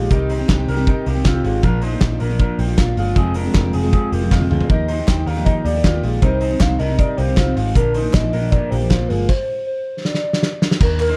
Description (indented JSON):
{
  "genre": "jangly indie pop",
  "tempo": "157 BPM",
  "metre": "4/4",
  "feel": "straight",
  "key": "unclear",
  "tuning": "A4 = 444 Hz",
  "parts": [
    { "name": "hollow clarinet-like synth lead", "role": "melody", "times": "0.0-0.7, 4.7-11.2 s", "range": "G4 to G5", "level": "-26 LUFS", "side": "equal", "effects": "chorus" },
    { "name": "picked steel-string acoustic guitar", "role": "accompaniment", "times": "0.0-9.3 s", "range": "F2 to G4", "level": "-26 LUFS", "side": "equal", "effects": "none" },
    { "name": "electric guitar through a small old amp", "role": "arpeggios", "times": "0.0-11.2 s", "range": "Ab3 to C5", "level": "-28 LUFS", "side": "equal", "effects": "lush chorus" },
    { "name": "vintage muted picked electric bass", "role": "bass", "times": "0.0-11.1 s", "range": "F1 to Eb2", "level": "-23 LUFS", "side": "equal", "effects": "none" },
    { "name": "loose indie drum kit", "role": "drums", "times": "0.1-11.1 s", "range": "crash cymbal, hi-hat, kick drum, snare drum, toms", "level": "-20 LUFS", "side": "equal", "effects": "none" },
    { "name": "group handclap", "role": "percussion", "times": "0.5-11.1 s", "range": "none", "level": "-37 LUFS", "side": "equal", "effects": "none" }
  ],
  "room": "little or no reverb",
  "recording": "none",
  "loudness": "-18 LUFS",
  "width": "mono",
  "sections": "0.0-10.8 A section",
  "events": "drum fill 4.3-4.7, 10.0-10.8; stop 9.3-10.8",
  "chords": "0.1 Cm; 1.6 Bb; 3.2 Fm; 4.7 Ebadd9; 6.2 Cm; 7.8 Bb; 9.3 N.C.",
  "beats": "| 0.11 0.49 0.87 1.25 | 1.64 2.02 2.40 2.78 | 3.16 3.54 3.93 4.31 | 4.69 5.08 5.46 5.84 | 6.22 6.61 6.99 7.37 | 7.75 8.14 8.52 8.90 | 9.28 9.67 10.05 10.43 | 10.81"
}